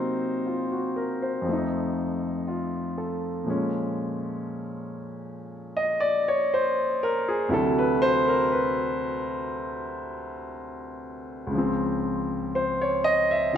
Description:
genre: solo jazz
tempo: 60 BPM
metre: 4/4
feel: swing 67% on 8ths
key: unclear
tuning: A4 = 439 Hz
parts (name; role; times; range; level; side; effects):
- warm baby grand piano; solo; 0.0-13.6 s; Db2 to E5; -24 LUFS; equal; none
room: moderate recital hall reverb, RT60 1.4 s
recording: recorded in a church or concert hall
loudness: -24 LUFS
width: side -9 dB against mid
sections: 0.0-3.5 A section; 3.5-13.6 B section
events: grand piano solo 3.5-13.6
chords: 0.0 Cm7b5; 1.5 F7; 3.5 Bbm7; 7.5 D9; 11.5 Dbmaj7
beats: 0.46 1.46 2.47 | 3.48 4.48 5.49 6.50 | 7.50 8.51 9.52 10.52 | 11.53 12.53 13.54

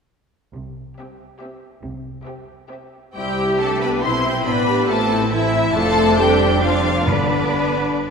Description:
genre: quick classical-period movement for symphony orchestra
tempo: 138 BPM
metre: 3/4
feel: rubato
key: C major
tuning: A4 = 439 Hz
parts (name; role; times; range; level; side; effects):
- clear studio double bass section; bass; 0.5-8.1 s; F1 to C2; -26 LUFS; right 3 dB; none
- rich studio cello section; bass; 0.5-8.1 s; C3 to B4; -25 LUFS; right 2 dB; none
- rich studio violin section; melody; 1.0-8.1 s; D5 to C6; -23 LUFS; left 4 dB; none
- rich studio violin section; second line; 1.0-8.1 s; D4 to C5; -25 LUFS; equal; none
- rich studio viola section; accompaniment; 1.0-8.1 s; A3 to G4; -24 LUFS; equal; none
- mellow French horn section; sustained chords; 3.2-8.1 s; D3 to C4; -21 LUFS; left 1 dB; none
- timpani; percussion; 7.1-7.7 s; G2; -23 LUFS; right 1 dB; none
room: wet scoring stage reverb, RT60 1.9 s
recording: recorded in a church or concert hall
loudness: -15 LUFS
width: side -5 dB against mid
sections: 0.5-3.2 A section; 3.2-8.1 B section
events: none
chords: 0.5 C; 4.5 Am; 5.7 Dm7/F; 7.1 G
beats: | 0.54 0.98 1.41 | 1.83 2.26 2.71 | 3.16 3.60 4.03 | 4.46 4.89 5.32 | 5.75 6.18 6.62 | 7.07 7.52 7.97

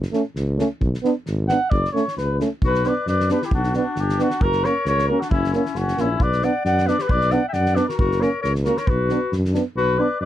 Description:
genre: balkan folk, Balkan brass band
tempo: 134 BPM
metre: 2/4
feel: swing 55% on 16ths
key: B harmonic minor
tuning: A4 = 444 Hz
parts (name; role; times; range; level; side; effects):
- mellow tuba; bass; 0.0-10.3 s; F#1 to F#2; -23 LUFS; equal; none
- loose indie drum kit; percussion; 0.0-9.6 s; kick drum, snare drum; -26 LUFS; equal; none
- warm euphonium; accompaniment; 0.1-10.1 s; C#4 to D4; -25 LUFS; left 3 dB; none
- warm euphonium; accompaniment; 0.1-10.1 s; A3 to B3; -23 LUFS; right 6 dB; none
- cornet with cup mute; melody; 1.5-10.3 s; E4 to G5; -23 LUFS; equal; none
- bright clarinet; second line; 2.6-10.3 s; C#4 to E5; -27 LUFS; left 8 dB; none
room: little or no reverb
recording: none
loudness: -18 LUFS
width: side -12 dB against mid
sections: 0.0-2.6 A section; 2.6-9.8 B section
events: cornet solo 0.0-2.6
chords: 0.0 F#m (rootless); 0.8 Bm; 1.7 F#m; 2.6 Bm; 4.4 F#; 6.2 Bm; 8.0 F#; 8.9 Bm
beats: 0.36 | 0.81 1.26 | 1.71 2.16 | 2.61 3.06 | 3.51 3.96 | 4.41 4.86 | 5.31 5.76 | 6.21 6.65 | 7.10 7.55 | 7.99 8.44 | 8.88 9.33 | 9.77 10.21

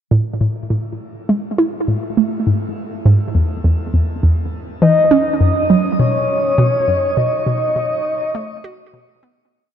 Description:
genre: ambient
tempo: 102 BPM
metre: 4/4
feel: straight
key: A lydian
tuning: A4 = 440 Hz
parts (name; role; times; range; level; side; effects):
- hollow square pluck; riff; 0.1-9.5 s; E2 to F#4; -16 LUFS; right 1 dB; chorus, tape echo
- soft octave-layered synth lead; melody; 4.8-8.9 s; C#5 to D#5; -16 LUFS; left 1 dB; chorus, cassette tape, tape echo
room: wet shimmer reverb, RT60 8.2 s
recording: dark, warm production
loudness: -14 LUFS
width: side -9 dB against mid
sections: 0.1-9.5 A section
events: filter sweep on synth arpeggio sound 0.1-9.5; fade-out 6.4-9.5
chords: 0.1 A5; 2.5 E; 4.8 F#5; 7.2 B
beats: | 0.11 0.70 1.29 1.88 | 2.47 3.06 3.64 4.23 | 4.82 5.41 6.00 6.58 | 7.17 7.76 8.35 8.94

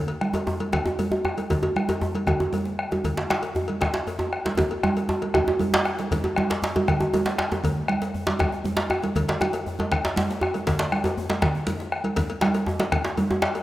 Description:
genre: west african traditional, West African drum ensemble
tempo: 158 BPM (dotted quarters)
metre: 12/8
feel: straight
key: none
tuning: none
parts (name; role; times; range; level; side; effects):
- cowbell; percussion; 0.1-13.6 s; none; -35 LUFS; left 4 dB; none
- bombo; percussion; 0.2-13.5 s; none; -29 LUFS; left 2 dB; none
- congas; percussion; 0.2-13.3 s; none; -27 LUFS; right 2 dB; none
- djembe; percussion; 0.3-13.6 s; none; -35 LUFS; left 2 dB; none
- djembe; percussion; 0.3-13.5 s; none; -25 LUFS; right 1 dB; none
room: moderate lush hall reverb, RT60 3.1 s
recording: rough home demo mix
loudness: -22 LUFS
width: side -15 dB against mid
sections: 0.0-6.1 A section; 6.1-13.6 B section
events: speeding up 0.0-13.6; drum fill 4.6-6.1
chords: none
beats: 0.34 0.73 1.12 | 1.51 1.89 2.28 2.67 | 3.05 3.44 3.82 4.20 | 4.59 4.97 5.35 5.74 | 6.12 6.50 6.88 7.26 | 7.64 8.02 8.40 8.78 | 9.16 9.54 9.92 10.29 | 10.67 11.05 11.42 11.80 | 12.18 12.55 12.93 13.30

